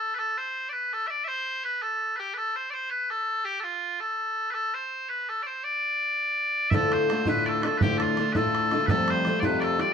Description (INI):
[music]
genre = celtic folk, Celtic jig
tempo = 110 BPM (dotted quarters)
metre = 6/8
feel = straight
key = D dorian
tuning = A4 = 440 Hz
[part]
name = loud bright bagpipes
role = melody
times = 0.0-9.9 s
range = F4 to E5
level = -26 LUFS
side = equal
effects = none
[part]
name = picked steel-string acoustic guitar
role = accompaniment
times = 6.7-9.9 s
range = D2 to F4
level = -25 LUFS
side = left 2 dB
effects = none
[part]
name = bodhran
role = percussion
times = 6.7-9.9 s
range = none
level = -29 LUFS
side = right 2 dB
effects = none
[sound]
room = wet stone room reverb, RT60 1.1 s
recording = band playing live in one room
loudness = -24 LUFS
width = side -7 dB against mid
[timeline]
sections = 0.0-6.7 A section; 6.7-9.9 A section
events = none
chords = 0.0 N.C.; 6.7 Dm; 8.9 Fadd9